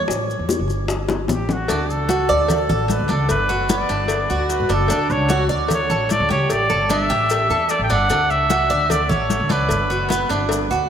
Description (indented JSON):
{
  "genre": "latin, Cuban son and guajira",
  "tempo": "150 BPM",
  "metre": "4/4",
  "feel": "straight",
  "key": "D major",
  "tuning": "A4 = 442 Hz",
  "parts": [
    { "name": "upright bass", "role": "bass", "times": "0.0-10.9 s", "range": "F#1 to E2", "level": "-23 LUFS", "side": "equal", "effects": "none" },
    { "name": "bongos and cowbell", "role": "percussion", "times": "0.1-10.7 s", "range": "none", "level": "-27 LUFS", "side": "left 5 dB", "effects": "none" },
    { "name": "congas", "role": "percussion", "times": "0.1-10.9 s", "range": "none", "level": "-27 LUFS", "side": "left 2 dB", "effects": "none" },
    { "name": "maracas", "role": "percussion", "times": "0.1-10.9 s", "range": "none", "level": "-34 LUFS", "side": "left 5 dB", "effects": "none" },
    { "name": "breathy trumpet", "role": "melody", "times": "1.3-10.3 s", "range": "F#4 to G5", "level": "-21 LUFS", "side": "equal", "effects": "none" },
    { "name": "Cuban tres", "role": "arpeggios", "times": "1.7-10.9 s", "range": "B3 to D5", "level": "-22 LUFS", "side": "right 2 dB", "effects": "none" }
  ],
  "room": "wet cathedral reverb, RT60 4.6 s",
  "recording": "in a vast, echoing space, faint mains hum",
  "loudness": "-16 LUFS",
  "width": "side -8 dB against mid",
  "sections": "0.0-1.7 A section; 1.7-10.9 B section",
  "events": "Cuban tres solo 0.0-1.7; drum fill 1.1-1.7",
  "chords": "0.1 A5; 1.7 Dmaj7; 3.3 Gmaj7; 4.9 Dmaj7(no3); 6.5 A7sus4; 8.1 Dmaj7; 9.7 Gmaj7",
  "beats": "| 0.10 0.50 0.90 1.30 | 1.70 2.10 2.50 2.90 | 3.30 3.70 4.10 4.50 | 4.90 5.30 5.70 6.10 | 6.50 6.91 7.30 7.71 | 8.11 8.51 8.91 9.31 | 9.71 10.11 10.51"
}